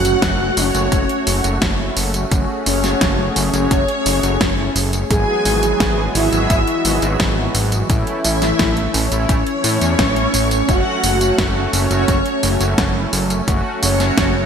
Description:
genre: synthwave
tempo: 86 BPM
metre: 4/4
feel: straight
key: F# minor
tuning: A4 = 441 Hz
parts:
  - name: expressive synth lead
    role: melody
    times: 0.0-14.3 s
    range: C#4 to G#4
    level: -21 LUFS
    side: equal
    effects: ensemble chorus, digital delay
  - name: string machine, violins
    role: second line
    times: 0.0-14.3 s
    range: C#5 to G#5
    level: -25 LUFS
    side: left 1 dB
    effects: ensemble chorus, digital delay
  - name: warm analog pad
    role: sustained chords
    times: 0.0-14.5 s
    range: E3 to G#4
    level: -25 LUFS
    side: equal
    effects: chorus, sidechain pumping
  - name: mellow synth brass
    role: stabs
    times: 0.0-14.5 s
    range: F#3 to G#4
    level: -24 LUFS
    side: right 1 dB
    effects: chorus, cassette tape, digital delay
  - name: fat analog bass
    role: bass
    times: 0.0-14.5 s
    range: F#1 to A2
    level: -20 LUFS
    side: equal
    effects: none
  - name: pop drum kit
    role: drums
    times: 0.0-14.3 s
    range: hi-hat, snare drum, tambourine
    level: -21 LUFS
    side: equal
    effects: overdrive, gated reverb
  - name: impact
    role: sound effects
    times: 0.0-2.3 s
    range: none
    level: -33 LUFS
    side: left 1 dB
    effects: none
  - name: electronic kick drum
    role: drums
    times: 0.2-14.3 s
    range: none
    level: -20 LUFS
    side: equal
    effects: overdrive
room: moderate lush hall reverb, RT60 2.8 s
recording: bright 1980s-style digital production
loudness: -14 LUFS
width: side -7 dB against mid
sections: 0.0-14.5 A section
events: impact 0.0-2.3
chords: 0.0 F#m; 5.1 Eadd9/G#; 7.9 A; 10.7 F#m

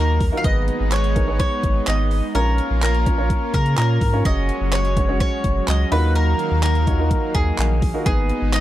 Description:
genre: dance-pop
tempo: 126 BPM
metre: 4/4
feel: straight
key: unclear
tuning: A4 = 440 Hz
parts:
  - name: bowl-back mandolin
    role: melody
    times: 0.0-8.6 s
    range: G#4 to E#5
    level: -24 LUFS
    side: left 1 dB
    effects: tape echo
  - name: clear baby grand piano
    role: accompaniment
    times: 0.0-8.6 s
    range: B3 to C#5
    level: -27 LUFS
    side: right 2 dB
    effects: sidechain pumping
  - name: lush unison pad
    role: sustained chords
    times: 0.0-8.6 s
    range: D#3 to E#5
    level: -28 LUFS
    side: right 1 dB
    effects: chorus, sidechain pumping
  - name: saturated sub bass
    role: bass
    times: 0.0-8.6 s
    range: F#1 to C#3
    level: -20 LUFS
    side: equal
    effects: sidechain pumping
  - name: pop drum kit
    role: drums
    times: 0.2-8.6 s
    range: handclaps, hi-hat, kick drum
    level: -22 LUFS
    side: equal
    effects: overdrive
room: digital ambience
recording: dry, close 1970s-style studio recording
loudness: -17 LUFS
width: side -14 dB against mid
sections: 0.0-8.6 A section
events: none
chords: 0.4 G#m; 2.3 A#m; 4.3 F#sus2; 5.9 D#madd9; 8.1 G#m

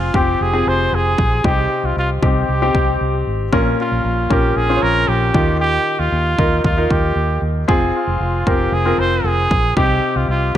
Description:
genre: piano-driven pop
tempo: 115 BPM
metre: 4/4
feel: straight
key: F minor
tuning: A4 = 440 Hz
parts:
  - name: clear trumpet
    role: melody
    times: 0.0-10.6 s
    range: F4 to C5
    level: -20 LUFS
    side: right 1 dB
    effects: none
  - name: clear baby grand piano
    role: accompaniment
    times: 0.0-10.6 s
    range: Bb2 to Db5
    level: -19 LUFS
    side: left 2 dB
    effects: none
  - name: vintage muted fingered electric bass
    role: bass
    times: 0.0-10.6 s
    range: F1 to Eb2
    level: -20 LUFS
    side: equal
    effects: none
  - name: electronic kick drum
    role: drums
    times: 0.1-10.6 s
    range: none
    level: -18 LUFS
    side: equal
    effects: overdrive
room: light reverb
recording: bright 1980s-style digital production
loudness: -14 LUFS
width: side -11 dB against mid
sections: 0.0-10.6 A section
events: none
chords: 0.0 Fm; 1.4 Cm; 3.5 Bbm; 5.3 Ebadd9; 7.7 Fm; 9.8 Cm

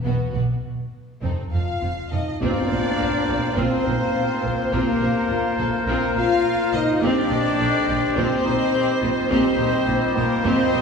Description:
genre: cinematic, heroic adventure film score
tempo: 104 BPM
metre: 4/4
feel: straight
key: Bb major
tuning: A4 = 439 Hz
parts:
  - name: warm symphonic violin section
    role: second line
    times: 0.0-10.8 s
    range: B3 to F5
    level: -30 LUFS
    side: left 3 dB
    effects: none
  - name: rich symphonic viola section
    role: accompaniment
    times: 0.0-10.8 s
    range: B3 to Eb5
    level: -28 LUFS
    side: right 1 dB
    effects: none
  - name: rich symphonic violin section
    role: melody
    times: 0.1-10.8 s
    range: F#4 to F5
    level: -32 LUFS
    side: left 4 dB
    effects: none
  - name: rich symphonic cello section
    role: bass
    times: 0.1-10.8 s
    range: F2 to B2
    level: -28 LUFS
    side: right 2 dB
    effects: none
  - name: rich symphonic double bass section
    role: bass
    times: 0.1-10.8 s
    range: F1 to B1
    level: -28 LUFS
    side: right 2 dB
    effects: none
  - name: mellow French horn section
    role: sustained chords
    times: 1.5-10.8 s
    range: A3 to F4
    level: -24 LUFS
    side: left 2 dB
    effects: none
  - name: bright flute section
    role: second line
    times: 2.4-10.8 s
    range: Eb5 to F5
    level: -31 LUFS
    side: equal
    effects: none
  - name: warm clarinet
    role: second line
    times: 2.4-10.7 s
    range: Eb4 to Bb4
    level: -31 LUFS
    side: left 3 dB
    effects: none
  - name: warm cor anglais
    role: second line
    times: 2.4-10.8 s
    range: G4 to Bb4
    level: -31 LUFS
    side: right 1 dB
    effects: none
  - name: mellow trombone section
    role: sustained chords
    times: 2.4-10.8 s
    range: Eb3 to Bb3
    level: -31 LUFS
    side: equal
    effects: none
  - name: warm trumpet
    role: stabs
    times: 2.4-10.8 s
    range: C5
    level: -29 LUFS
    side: left 1 dB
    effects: none
  - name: tam-tam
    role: percussion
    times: 2.4-4.7 s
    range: none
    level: -33 LUFS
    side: left 1 dB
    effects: none
room: wet scoring stage reverb, RT60 1.8 s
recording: heard from further back in the room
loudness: -19 LUFS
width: side -5 dB against mid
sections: 0.0-2.4 A section; 2.4-10.8 B section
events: band accent 2.4-3.0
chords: 0.1 B5; 1.2 F7; 2.4 Bbsus2; 7.0 Cm/Bb

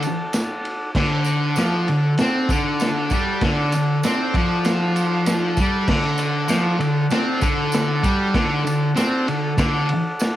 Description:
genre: garage rock duo or trio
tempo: 97 BPM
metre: 4/4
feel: straight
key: D mixolydian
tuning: A4 = 439 Hz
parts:
  - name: combo organ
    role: sustained chords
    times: 0.0-10.4 s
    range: A4 to A5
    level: -27 LUFS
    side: equal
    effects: cassette tape
  - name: thick fuzz guitar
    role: riff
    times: 0.0-9.9 s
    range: D3 to C4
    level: -20 LUFS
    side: equal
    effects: distortion, cassette tape
  - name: crunchy breakbeat drum kit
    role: drums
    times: 0.0-10.3 s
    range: crash cymbal, kick drum, ride cymbal, snare drum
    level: -23 LUFS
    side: equal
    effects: cassette tape
  - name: tambourine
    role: percussion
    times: 0.0-10.3 s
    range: none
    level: -36 LUFS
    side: right 7 dB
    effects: none
room: light reverb, small room ambience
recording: home recording on cassette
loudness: -18 LUFS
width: side -13 dB against mid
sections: 0.0-5.9 A section; 5.9-10.4 A section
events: transistor combo organ fill 0.0-1.0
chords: 0.0 D

